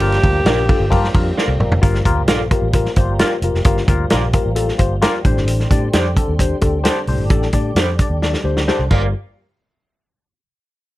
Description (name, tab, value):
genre	uptempo 1960s-style soul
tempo	131 BPM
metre	4/4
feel	straight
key	G minor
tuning	A4 = 440 Hz
part	breathy alto saxophone	melody	0.0-1.1 s	G4	-21 LUFS	right 2 dB	tape echo
part	tine electric piano	accompaniment	0.0-9.1 s	G2 to D5	-21 LUFS	left 4 dB	overdrive, phaser
part	tonewheel organ	sustained chords	0.0-9.1 s	D3 to D4	-28 LUFS	right 1 dB	overdrive, chorus vibrato, slow rotary speaker
part	vintage muted fingered electric bass	bass	0.0-9.1 s	F1 to A2	-20 LUFS	equal	none
part	warm soul drum kit	drums	0.0-9.0 s	crash cymbal, hi-hat, kick drum, ride cymbal, snare drum, toms	-17 LUFS	equal	none
part	electric guitar through a small old amp	stabs	0.5-9.1 s	F4 to D5	-22 LUFS	right 3 dB	none
room	little or no reverb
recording	none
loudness	-14 LUFS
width	side -16 dB against mid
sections	0.0-1.8 A section; 1.8-9.1 B section; 9.1-11.0 C section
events	drum fill 1.4-1.8, 8.2-9.1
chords	0.0 Gm7; 5.3 D7sus4; 8.9 Gm7; 9.1 N.C.